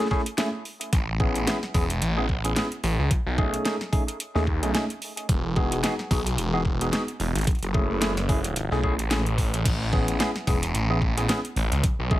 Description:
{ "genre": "glitch hop", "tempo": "110 BPM", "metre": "4/4", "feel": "swing 57% on 16ths", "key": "unclear", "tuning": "A4 = 443 Hz", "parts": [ { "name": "barky tine electric piano", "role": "stabs", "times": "0.0-12.2 s", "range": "A3 to G#4", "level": "-29 LUFS", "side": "equal", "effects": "overdrive, phaser, sidechain pumping, dub echo" }, { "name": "dubstep drum kit", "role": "drums", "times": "0.1-12.0 s", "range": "crash cymbal, hi-hat, snare drum", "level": "-29 LUFS", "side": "equal", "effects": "studio ambience" }, { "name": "electronic kick drum", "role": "drums", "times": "0.1-12.2 s", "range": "none", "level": "-24 LUFS", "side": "equal", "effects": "studio ambience" }, { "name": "phased detuned saw bass", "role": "bass", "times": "0.9-12.2 s", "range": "E1 to D#2", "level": "-26 LUFS", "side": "equal", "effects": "phaser, tube saturation" } ], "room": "light reverb", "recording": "heavily compressed radio sound", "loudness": "-22 LUFS", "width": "side -15 dB against mid", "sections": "0.0-12.2 A section", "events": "none", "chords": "0.0 F#m7 (rootless); 0.9 Amaj9; 3.1 B13; 5.3 Emaj7; 7.5 F#m7; 9.7 Amaj9", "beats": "0.38 | 0.93 1.47 2.02 2.56 | 3.11 3.65 4.20 4.75 | 5.29 5.84 6.38 6.93 | 7.47 8.02 8.56 9.11 | 9.65 10.20 10.74 11.29 | 11.84" }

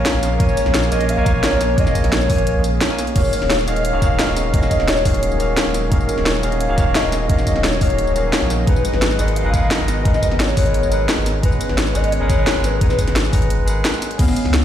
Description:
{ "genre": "liquid drum and bass", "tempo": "174 BPM", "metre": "4/4", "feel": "straight", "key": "G# dorian", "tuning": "A4 = 440 Hz", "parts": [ { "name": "hollow clarinet-like synth lead", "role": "melody", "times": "0.0-14.6 s", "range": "B3 to E#5", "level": "-22 LUFS", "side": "left 1 dB", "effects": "ensemble chorus, tape echo" }, { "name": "barky tine electric piano", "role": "accompaniment", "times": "0.0-14.6 s", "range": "D#3 to A#5", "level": "-24 LUFS", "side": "equal", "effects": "overdrive, tape echo" }, { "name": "lush unison pad", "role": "sustained chords", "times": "0.0-14.2 s", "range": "F#3 to E#5", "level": "-26 LUFS", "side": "equal", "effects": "chorus" }, { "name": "warm sub bass", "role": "bass", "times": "0.0-14.6 s", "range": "D#1 to C#2", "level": "-20 LUFS", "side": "equal", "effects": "none" }, { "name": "drum and bass drum kit", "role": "drums", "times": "0.1-14.6 s", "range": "crash cymbal, hi-hat, snare drum, tambourine", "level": "-22 LUFS", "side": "equal", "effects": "overdrive" }, { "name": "electronic kick drum", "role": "drums", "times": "0.4-14.3 s", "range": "none", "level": "-17 LUFS", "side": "equal", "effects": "overdrive" } ], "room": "light reverb", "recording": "played on a big sound system in a bare room, large studio reverb", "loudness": "-15 LUFS", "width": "side -10 dB against mid", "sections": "0.0-14.2 A section", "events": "drop 0.0-14.2", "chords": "0.0 A#m7; 3.2 D#m11; 8.7 G#m9", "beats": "0.06 | 0.40 0.74 1.09 1.43 | 1.78 2.12 2.47 2.81 | 3.16 3.50 3.85 4.19 | 4.54 4.88 5.23 5.57 | 5.92 6.26 6.61 6.95 | 7.30 7.64 7.99 8.33 | 8.68 9.02 9.37 9.71 | 10.05 10.40 10.74 11.09 | 11.43 11.78 12.12 12.47 | 12.81 13.16 13.50 13.85 | 14.19 14.54" }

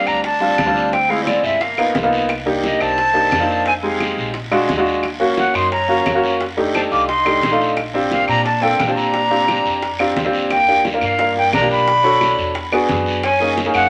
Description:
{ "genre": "Afro-Cuban jazz", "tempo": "175 BPM", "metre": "4/4", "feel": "straight", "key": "unclear", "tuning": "A4 = 440 Hz", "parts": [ { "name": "breathy silver concert flute", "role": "melody", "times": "0.0-13.9 s", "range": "C5 to D6", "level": "-20 LUFS", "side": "equal", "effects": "none" }, { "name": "warm tenor saxophone", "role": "second line", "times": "0.0-13.9 s", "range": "E3 to F4", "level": "-28 LUFS", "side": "equal", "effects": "none" }, { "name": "warm grand piano", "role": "accompaniment", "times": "0.0-13.8 s", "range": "G3 to Db5", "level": "-21 LUFS", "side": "equal", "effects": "none" }, { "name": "upright bass", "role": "bass", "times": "0.1-13.9 s", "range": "G1 to Bb2", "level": "-32 LUFS", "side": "equal", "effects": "none" }, { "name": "bongos", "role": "percussion", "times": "0.1-13.9 s", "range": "none", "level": "-29 LUFS", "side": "equal", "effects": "none" }, { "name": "claves", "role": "percussion", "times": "0.1-13.9 s", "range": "none", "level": "-30 LUFS", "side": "equal", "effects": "none" }, { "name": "guiro", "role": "percussion", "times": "0.1-13.9 s", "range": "none", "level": "-30 LUFS", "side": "equal", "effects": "none" } ], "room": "wet studio reverb, RT60 0.8 s", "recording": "none", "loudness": "-17 LUFS", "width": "mono", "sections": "0.0-10.5 A section; 10.5-13.9 B section", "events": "none", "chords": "0.0 Bbmaj13/D; 0.9 Dm7b5; 1.6 G7alt; 2.3 Cm7; 3.7 Fm7; 4.3 Bb7b13; 5.0 Ebm7; 6.4 F13; 10.5 Ebmaj9; 11.9 Bm7; 12.6 E9; 13.2 Gb6", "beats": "0.24 0.59 | 0.93 1.27 1.61 1.95 | 2.30 2.64 2.98 3.32 | 3.67 4.01 4.35 4.69 | 5.03 5.38 5.72 6.06 | 6.40 6.74 7.09 7.43 | 7.77 8.11 8.45 8.80 | 9.14 9.48 9.82 10.16 | 10.51 10.85 11.19 11.53 | 11.87 12.21 12.55 12.89 | 13.23 13.57" }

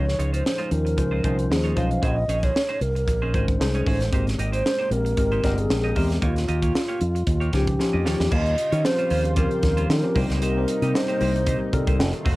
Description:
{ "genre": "polished 1980s jazz-funk pop", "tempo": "114 BPM", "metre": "4/4", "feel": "swing 54% on 16ths", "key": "unclear", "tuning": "A4 = 440 Hz", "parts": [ { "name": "breathy mellow wooden-headed alto flute", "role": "melody", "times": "0.0-12.2 s", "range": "F4 to F5", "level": "-26 LUFS", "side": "equal", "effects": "cassette tape" }, { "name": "tine electric piano", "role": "accompaniment", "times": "0.0-12.0 s", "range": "F3 to Eb5", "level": "-27 LUFS", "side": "left 2 dB", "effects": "analog chorus, cassette tape" }, { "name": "clean electric guitar", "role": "riff", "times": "0.0-12.4 s", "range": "G3 to Eb5", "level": "-32 LUFS", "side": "right 3 dB", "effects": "wide subtle chorus, cassette tape" }, { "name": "fingered electric bass with an envelope filter", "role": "bass", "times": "0.0-12.4 s", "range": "F1 to Eb3", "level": "-24 LUFS", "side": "equal", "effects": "none" }, { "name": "crisp fusion drum kit", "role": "drums", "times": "0.1-12.4 s", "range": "crash cymbal, hi-hat, kick drum, snare drum", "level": "-26 LUFS", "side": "equal", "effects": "cassette tape" }, { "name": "lush unison pad", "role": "sustained chords", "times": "8.3-12.4 s", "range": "C3 to C5", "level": "-31 LUFS", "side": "equal", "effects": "chorus, cassette tape" } ], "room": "light reverb", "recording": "home recording on cassette", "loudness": "-20 LUFS", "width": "side -19 dB against mid", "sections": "0.0-8.3 A section; 8.3-12.4 B section", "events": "drum fill 7.8-8.3", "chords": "0.0 Dbmaj9; 2.0 Bbm11; 4.1 Abmaj9; 6.2 Eb9; 8.3 Eb13; 10.2 Cm7", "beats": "0.46 0.98 1.50 | 2.03 2.55 3.08 3.60 | 4.12 4.65 5.17 5.70 | 6.22 6.75 7.27 7.80 | 8.32 8.85 9.37 9.89 | 10.42 10.94 11.47 11.99" }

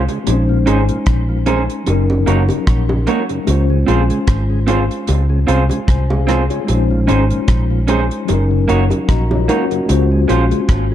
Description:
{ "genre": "lovers rock reggae", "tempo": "75 BPM", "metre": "4/4", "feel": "swing 56% on 16ths", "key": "Db major", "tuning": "A4 = 440 Hz", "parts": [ { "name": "mellow tine electric piano", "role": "accompaniment", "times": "0.0-10.9 s", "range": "Gb3 to Bb5", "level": "-20 LUFS", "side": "left 4 dB", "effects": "medium stereo tremolo" }, { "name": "vintage muted fingered electric bass", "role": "bass", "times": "0.0-10.9 s", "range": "Gb1 to Db2", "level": "-15 LUFS", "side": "equal", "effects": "none" }, { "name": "tonewheel organ", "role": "accompaniment", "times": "0.1-10.9 s", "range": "Gb2 to Ab4", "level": "-26 LUFS", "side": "right 2 dB", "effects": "slow rotary speaker" }, { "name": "damped 70s drum kit", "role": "drums", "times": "0.1-10.9 s", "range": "hi-hat, kick drum, rim click", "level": "-18 LUFS", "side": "equal", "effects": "none" }, { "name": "bongos", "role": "percussion", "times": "0.3-10.1 s", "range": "none", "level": "-26 LUFS", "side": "right 2 dB", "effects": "tape echo" }, { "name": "electric guitar through a small old amp", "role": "stabs", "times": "0.7-10.4 s", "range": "Ab3 to Db5", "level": "-20 LUFS", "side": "right 3 dB", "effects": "tape echo" } ], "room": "light reverb", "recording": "dark, warm production", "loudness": "-13 LUFS", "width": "side -11 dB against mid", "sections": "0.0-10.9 A section", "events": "tine electric piano fill 8.7-9.9", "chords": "0.3 Bbm11; 1.9 Gb6; 3.5 Dbmaj7; 6.7 Bbm11; 8.3 Gb6; 9.9 Dbmaj7", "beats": "| 0.27 1.07 1.87 2.67 | 3.47 4.28 5.08 5.88 | 6.68 7.48 8.29 9.09 | 9.89 10.69" }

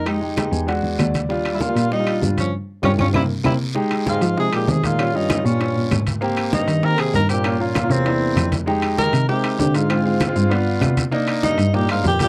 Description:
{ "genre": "Afro-Cuban jazz", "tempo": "195 BPM", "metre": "4/4", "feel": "straight", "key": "unclear", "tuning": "A4 = 440 Hz", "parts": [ { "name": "warm tenor saxophone", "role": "melody", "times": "0.0-12.3 s", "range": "C4 to Bb4", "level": "-26 LUFS", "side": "equal", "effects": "none" }, { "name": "breathy trombone", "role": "second line", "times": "0.0-12.3 s", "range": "Fb2 to Bb3", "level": "-28 LUFS", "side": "equal", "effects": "none" }, { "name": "warm cello", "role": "bass", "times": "0.0-12.3 s", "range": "Eb2 to F3", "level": "-24 LUFS", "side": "equal", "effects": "none" }, { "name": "warm concert grand piano", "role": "accompaniment", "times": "0.1-12.3 s", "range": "G3 to Ab5", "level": "-26 LUFS", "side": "equal", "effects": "none" }, { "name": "bongos", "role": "percussion", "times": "0.1-12.3 s", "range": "none", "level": "-32 LUFS", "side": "equal", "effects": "none" }, { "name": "claves", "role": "percussion", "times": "0.1-12.0 s", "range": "none", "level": "-36 LUFS", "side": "equal", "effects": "none" }, { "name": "congas", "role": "percussion", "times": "0.1-12.3 s", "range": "none", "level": "-30 LUFS", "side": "equal", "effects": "none" }, { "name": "guiro", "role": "percussion", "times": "0.1-12.3 s", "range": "none", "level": "-38 LUFS", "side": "equal", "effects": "none" }, { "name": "timbales", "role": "percussion", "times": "0.1-12.3 s", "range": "none", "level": "-32 LUFS", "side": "equal", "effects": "none" } ], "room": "light reverb", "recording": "dry, close 1970s-style studio recording", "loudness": "-20 LUFS", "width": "mono", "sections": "0.0-3.8 A section; 3.8-12.3 B section", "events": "grand piano fill 0.4-1.3; band accent 2.5-3.8; drum fill 3.0-3.8", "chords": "0.1 Fm7; 0.7 E9; 1.3 Ebmaj7; 2.5 Fsus2/G; 3.1 C7; 3.8 Fm7; 5.0 Eb7; 6.2 Abmaj9; 7.4 Gm7b5; 8.1 C7; 8.7 Fm7; 9.9 Dm7b5; 10.5 G7; 11.1 Cm7", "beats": "| 0.07 0.37 0.68 0.99 | 1.30 1.60 1.91 2.22 | 2.53 2.84 3.14 3.45 | 3.76 4.07 4.38 4.68 | 4.99 5.30 5.60 5.91 | 6.22 6.53 6.83 7.14 | 7.45 7.75 8.06 8.37 | 8.67 8.98 9.29 9.60 | 9.90 10.21 10.52 10.82 | 11.13 11.44 11.74 12.05" }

